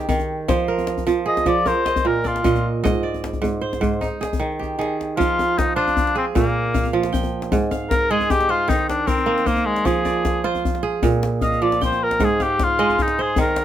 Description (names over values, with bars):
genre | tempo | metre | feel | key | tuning
west african traditional, West African string and xylophone music | 102 BPM (dotted quarters) | 12/8 | straight | F dorian | A4 = 440 Hz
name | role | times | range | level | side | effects
kora | arpeggios | 0.0-13.6 s | Ab2 to G5 | -21 LUFS | right 4 dB | none
djembe | percussion | 0.1-13.6 s | none | -25 LUFS | left 3 dB | none
warm cor anglais | melody | 1.3-13.6 s | Ab3 to Eb5 | -20 LUFS | left 2 dB | plate reverb
room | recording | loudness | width
light reverb | none | -18 LUFS | side -11 dB against mid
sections
0.0-5.2 A section; 5.2-13.6 B section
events
drum fill 4.6-5.2; cor anglais solo 5.2-13.6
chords
0.5 Fm; 1.7 Bb; 2.8 Ab; 4.0 Eb; 5.2 Fm; 6.4 Bb5; 7.5 Ab; 8.7 Eb5; 9.9 Fm; 11.0 Bb5; 12.2 Ab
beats
| 0.48 1.07 1.66 2.25 | 2.84 3.42 4.01 4.60 | 5.18 5.77 6.35 6.94 | 7.52 8.11 8.69 9.28 | 9.86 10.45 11.04 11.62 | 12.21 12.79 13.38